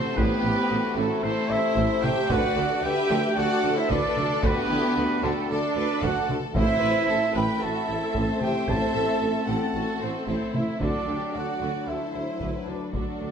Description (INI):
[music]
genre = cinematic, epic orchestral film score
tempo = 113 BPM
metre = 4/4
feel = straight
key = A dorian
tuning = A4 = 440 Hz
[part]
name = warm symphonic violin section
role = melody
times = 0.0-13.3 s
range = F#4 to G5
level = -33 LUFS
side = left 5 dB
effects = none
[part]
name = rich symphonic violin section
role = second line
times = 0.0-13.3 s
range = E4 to C5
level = -33 LUFS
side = left 5 dB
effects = none
[part]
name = rich symphonic viola section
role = accompaniment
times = 0.0-13.3 s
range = A3 to B4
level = -30 LUFS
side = right 1 dB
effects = none
[part]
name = mellow French horn section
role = sustained chords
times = 0.0-13.3 s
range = C3 to D4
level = -31 LUFS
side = left 4 dB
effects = none
[part]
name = mellow trumpet section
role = stabs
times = 0.0-13.3 s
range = A4 to B5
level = -28 LUFS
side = right 4 dB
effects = none
[part]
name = rich symphonic double bass section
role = bass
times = 0.2-13.3 s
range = A1 to D2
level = -34 LUFS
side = right 3 dB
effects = none
[part]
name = warm symphonic cello section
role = bass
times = 0.2-13.3 s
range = A2 to D3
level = -33 LUFS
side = right 2 dB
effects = none
[part]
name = warm tuba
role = bass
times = 0.2-13.3 s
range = A1 to D2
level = -33 LUFS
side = right 3 dB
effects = none
[part]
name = taiko ensemble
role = drums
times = 0.2-13.3 s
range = none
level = -31 LUFS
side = equal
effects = none
[part]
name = timpani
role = percussion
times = 6.6-7.3 s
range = A2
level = -34 LUFS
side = equal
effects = none
[sound]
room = wet recital hall reverb, RT60 1.5 s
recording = none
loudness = -22 LUFS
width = side -7 dB against mid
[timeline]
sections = 0.0-13.3 A section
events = none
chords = 0.0 Am; 2.3 D; 6.6 Am; 10.8 D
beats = | 0.17 0.70 1.23 1.76 | 2.29 2.83 3.36 3.89 | 4.42 4.95 5.49 6.02 | 6.55 7.08 7.62 8.15 | 8.68 9.21 9.74 10.28 | 10.81 11.34 11.88 12.41 | 12.94